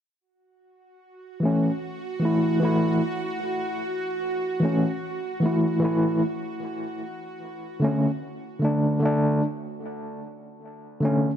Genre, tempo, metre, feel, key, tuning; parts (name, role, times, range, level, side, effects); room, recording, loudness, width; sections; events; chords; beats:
trip hop; 75 BPM; 4/4; swing 59% on 16ths; F# minor; A4 = 440 Hz
bowed-like drone; texture; 1.2-9.8 s; F#4; -32 LUFS; right 2 dB; built-in reverb
overdriven tine electric piano; accompaniment; 1.4-11.3 s; D3 to E4; -23 LUFS; equal; medium tremolo, low-pass filter, tape echo
light reverb; -22 LUFS; side -9 dB against mid
0.2-11.4 A section
filter sweep on tine electric piano 0.2-11.4; break 9.8-11.4
0.2 F#m7; 6.6 D
| 0.22 1.02 1.82 2.62 | 3.42 4.22 5.02 5.82 | 6.62 7.42 8.22 9.02 | 9.82 10.62